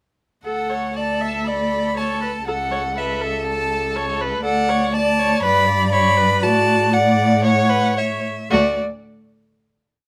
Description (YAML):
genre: quick classical-period movement for string quartet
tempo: 119 BPM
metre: 4/4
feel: uneven beats, rubato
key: D major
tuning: A4 = 439 Hz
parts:
  - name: warm violin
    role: melody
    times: 0.5-8.8 s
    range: D5 to B5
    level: -23 LUFS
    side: equal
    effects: none
  - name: rich violin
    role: second line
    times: 0.5-8.8 s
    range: F#4 to D5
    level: -28 LUFS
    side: equal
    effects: none
  - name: rich viola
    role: accompaniment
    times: 0.5-8.8 s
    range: A3 to E5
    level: -25 LUFS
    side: equal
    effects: none
  - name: warm cello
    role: bass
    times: 0.5-8.8 s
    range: C#2 to A2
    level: -25 LUFS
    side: equal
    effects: none
room: light reverb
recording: close, detailed microphones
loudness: -19 LUFS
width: mono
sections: 0.5-8.5 theme; 8.5-10.1 final chord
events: none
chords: 0.5 D; 2.5 A/C#; 4.4 D; 5.4 G; 6.4 D/A; 7.4 A; 8.5 D5